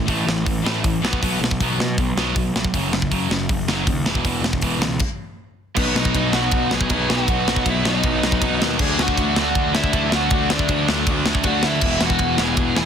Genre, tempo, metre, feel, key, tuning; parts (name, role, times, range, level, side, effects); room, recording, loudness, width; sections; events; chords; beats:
punk rock; 158 BPM; 4/4; straight; A4 = 439 Hz
sludgy distorted guitar; riff; 0.0-12.9 s; E2 to D4; -26 LUFS; left 14 dB; overdrive
tight distorted guitar; riff; 0.0-12.9 s; E2 to D4; -25 LUFS; right 12 dB; distortion
fuzz picked electric bass; bass; 0.0-12.9 s; E1 to B2; -25 LUFS; equal; overdrive
tight metal drum kit; drums; 0.1-12.9 s; crash cymbal, hi-hat, kick drum, ride cymbal, snare drum; -22 LUFS; equal
smooth overdriven lead guitar; melody; 5.8-12.9 s; B3 to G#5; -24 LUFS; right 1 dB
overdriven electric guitar; riff; 5.8-12.9 s; B2 to E4; -28 LUFS; equal
light reverb; dense, heavily limited modern master; -17 LUFS; side -8 dB against mid
0.0-5.8 A section; 5.8-12.9 B section
stop 5.0-5.8
0.0 A5; 1.0 B5; 2.7 F#5; 4.1 E5; 5.0 N.C.; 5.8 B; 8.8 D; 11.8 E
0.07 0.45 0.83 | 1.21 1.59 1.97 2.35 | 2.73 3.11 3.49 3.87 | 4.25 4.63 5.01 5.39 | 5.77 6.15 6.53 6.90 | 7.28 7.66 8.04 8.42 | 8.80 9.17 9.55 9.93 | 10.31 10.69 11.06 11.44 | 11.82 12.20 12.57